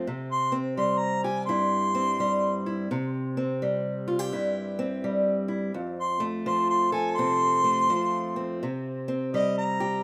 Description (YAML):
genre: blues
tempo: 84 BPM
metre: 4/4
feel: swing 63% on 8ths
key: unclear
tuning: A4 = 440 Hz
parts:
  - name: fingerpicked acoustic archtop guitar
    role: accompaniment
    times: 0.0-10.0 s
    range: F2 to A4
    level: -30 LUFS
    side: equal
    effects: none
  - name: mellow harmonica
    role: melody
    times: 0.3-10.0 s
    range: Eb5 to C6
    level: -28 LUFS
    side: equal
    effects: none
room: light reverb, small room ambience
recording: rough home demo mix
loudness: -27 LUFS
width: mono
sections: 0.0-10.0 A section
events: harmonica solo 0.0-10.0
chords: 0.1 C; 5.8 F; 8.6 C5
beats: | 0.06 0.77 1.48 2.19 | 2.90 3.61 4.33 5.04 | 5.75 6.47 7.18 7.90 | 8.62 9.34